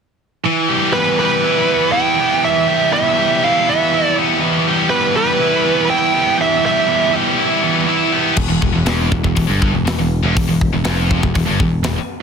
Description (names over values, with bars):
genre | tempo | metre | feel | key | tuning
heavy metal | 121 BPM | 4/4 | straight | E phrygian | A4 = 436 Hz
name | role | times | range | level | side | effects
high-gain distorted guitar | riff | 0.4-12.0 s | E2 to G4 | -19 LUFS | right 13 dB | distortion
scooped high-gain guitar | riff | 0.5-12.0 s | E2 to E4 | -18 LUFS | left 14 dB | distortion
high-gain lead guitar | melody | 0.9-7.1 s | B4 to G5 | -16 LUFS | right 3 dB | distortion, digital delay
modern bright picked electric bass | bass | 8.4-12.0 s | E1 to G1 | -19 LUFS | left 1 dB | none
tight metal drum kit | drums | 8.4-12.0 s | crash cymbal, hi-hat, kick drum, snare drum | -19 LUFS | left 1 dB | soft clipping on snare
room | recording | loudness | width
little or no reverb | dense, heavily limited modern master | -13 LUFS | side -6 dB against mid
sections
0.5-8.4 A section; 8.4-12.2 B section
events
none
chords
0.5 Em